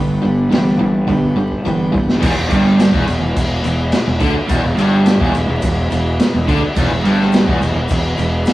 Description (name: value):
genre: classic rock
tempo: 106 BPM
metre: 4/4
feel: straight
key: unclear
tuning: A4 = 440 Hz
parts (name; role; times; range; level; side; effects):
- picked steel-string acoustic guitar; accompaniment; 0.0-2.2 s; G2 to G4; -18 LUFS; equal; none
- overdriven electric guitar; riff; 0.0-8.4 s; E2 to E3; -18 LUFS; right 2 dB; spring reverb
- overdriven semi-hollow guitar; riff; 0.0-8.4 s; E2 to E3; -21 LUFS; left 1 dB; none
- fuzz fingered electric bass; bass; 0.0-8.4 s; E1 to D2; -19 LUFS; equal; overdrive
- vintage drum kit; drums; 0.5-8.5 s; crash cymbal, hi-hat, kick drum, snare drum; -18 LUFS; equal; vintage 12-bit sampler grit
- tonewheel organ; sustained chords; 2.2-8.5 s; G#4 to E5; -29 LUFS; equal; overdrive, slow rotary speaker
- tube shaker; percussion; 2.2-8.5 s; none; -44 LUFS; left 2 dB; none
room: wet stone room reverb, RT60 1.2 s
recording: rough rehearsal-room recording, vinyl crackle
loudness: -13 LUFS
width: side -16 dB against mid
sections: 0.0-2.2 A section; 2.2-8.5 B section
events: drum fill 1.1-2.2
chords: 0.0 G; 2.2 E